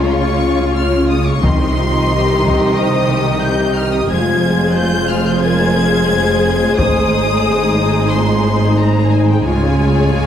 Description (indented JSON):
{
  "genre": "cinematic, epic orchestral film score",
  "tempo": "90 BPM",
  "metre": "4/4",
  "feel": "straight",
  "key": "C phrygian",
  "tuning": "A4 = 440 Hz",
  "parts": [
    { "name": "rich symphonic violin section", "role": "melody", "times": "0.0-10.3 s", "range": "G5 to Ab6", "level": "-21 LUFS", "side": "left 2 dB", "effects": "none" },
    { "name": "warm symphonic violin section", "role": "second line", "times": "0.0-10.3 s", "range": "F4 to Eb5", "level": "-22 LUFS", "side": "left 3 dB", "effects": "none" },
    { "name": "warm symphonic viola section", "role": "accompaniment", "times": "0.0-10.3 s", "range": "Eb3 to F4", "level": "-20 LUFS", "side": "equal", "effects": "none" },
    { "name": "dark French horn section", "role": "sustained chords", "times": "0.0-10.3 s", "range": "Ab3 to C5", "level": "-20 LUFS", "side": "left 3 dB", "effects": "none" },
    { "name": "rich symphonic cello section", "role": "bass", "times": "0.0-10.3 s", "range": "F2 to Db3", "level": "-20 LUFS", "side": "right 1 dB", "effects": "none" },
    { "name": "rich symphonic double bass section", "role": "bass", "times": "0.0-10.3 s", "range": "F1 to Db2", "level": "-18 LUFS", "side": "right 2 dB", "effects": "none" },
    { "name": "taiko ensemble", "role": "drums", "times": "1.4-2.8, 6.8-8.1 s", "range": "none", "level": "-20 LUFS", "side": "left 1 dB", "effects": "none" }
  ],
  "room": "wet concert hall reverb, RT60 2.5 s",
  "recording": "none",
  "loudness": "-12 LUFS",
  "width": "side -9 dB against mid",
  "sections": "0.0-10.3 A section",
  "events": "none",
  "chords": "0.0 Db; 1.4 Cm; 4.1 Fm; 6.8 Ab; 9.5 Db"
}